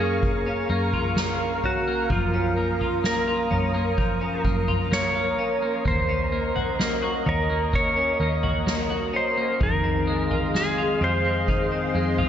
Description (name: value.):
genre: dream pop.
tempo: 64 BPM.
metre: 4/4.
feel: straight.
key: Gb lydian.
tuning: A4 = 439 Hz.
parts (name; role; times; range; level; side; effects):
clean lap steel guitar; melody; 0.0-12.3 s; F4 to Db5; -26 LUFS; equal; tape echo.
soft string machine; sustained chords; 0.0-12.3 s; Ab4 to Eb6; -28 LUFS; equal; ensemble chorus.
twelve-string electric guitar; arpeggios; 0.0-12.3 s; Eb3 to Gb4; -28 LUFS; left 2 dB; lush chorus, tape echo.
vintage muted picked electric bass; bass; 0.0-12.3 s; Eb2 to Gb2; -28 LUFS; equal; none.
soft-mallet drum kit; drums; 0.2-12.3 s; kick drum, snare drum, toms; -28 LUFS; equal; none.
room: moderate concert hall reverb, RT60 2.1 s.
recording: nothing above 7.8 kHz.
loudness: -21 LUFS.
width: side -9 dB against mid.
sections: 0.0-12.3 A section.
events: none.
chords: 0.0 Gbmaj7; 5.9 Ebm7; 9.6 Fm7.